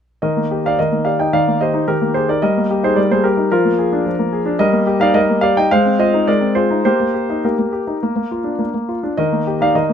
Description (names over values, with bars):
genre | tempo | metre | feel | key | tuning
classical-period piano sonatina | 102-111 BPM | 4/4 | rubato | Eb major | A4 = 440 Hz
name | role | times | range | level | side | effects
warm concert grand piano | solo | 0.2-9.9 s | Eb3 to G5 | -14 LUFS | equal | none
room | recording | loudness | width
light reverb | close, detailed microphones, faint mains hum | -14 LUFS | side -8 dB against mid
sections
0.2-9.9 A section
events
none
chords
0.2 Eb; 2.4 Eb/G; 3.5 Bb7/F; 4.6 Eb/G; 5.7 Fm7/Ab; 6.9 Eb/Bb; 8.0 Bb; 9.2 Eb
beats
| 0.21 0.77 1.33 1.88 | 2.43 2.97 3.52 4.06 | 4.61 5.16 5.72 6.28 | 6.86 7.44 8.03 8.60 | 9.18 9.74